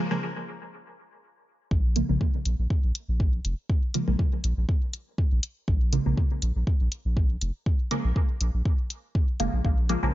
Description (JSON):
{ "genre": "dub techno", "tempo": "121 BPM", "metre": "4/4", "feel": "swing 54% on 16ths", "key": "Bb minor", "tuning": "A4 = 439 Hz", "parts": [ { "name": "filtered dub chord stab", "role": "stabs", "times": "0.0-10.1 s", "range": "Db3 to Bb3", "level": "-28 LUFS", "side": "right 1 dB", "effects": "phaser, sidechain pumping, dub echo" }, { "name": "soft dub sub bass", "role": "bass", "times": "1.7-10.1 s", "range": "F1 to Bb1", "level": "-26 LUFS", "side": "equal", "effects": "sidechain pumping" }, { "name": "electronic kick drum", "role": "drums", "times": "1.7-9.8 s", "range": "none", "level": "-24 LUFS", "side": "equal", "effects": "none" }, { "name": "electronic hi-hat", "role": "drums", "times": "2.0-10.0 s", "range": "none", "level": "-32 LUFS", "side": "left 2 dB", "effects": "none" } ], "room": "digital ambience", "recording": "nothing above 7.5 kHz", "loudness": "-24 LUFS", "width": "side -15 dB against mid", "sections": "0.0-1.7 A section; 1.7-10.1 B section", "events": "none", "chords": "0.0 Bbm7", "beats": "0.22 0.72 1.22 | 1.71 2.21 2.70 3.20 | 3.69 4.19 4.69 5.18 | 5.68 6.17 6.67 7.17 | 7.66 8.16 8.65 9.15 | 9.65" }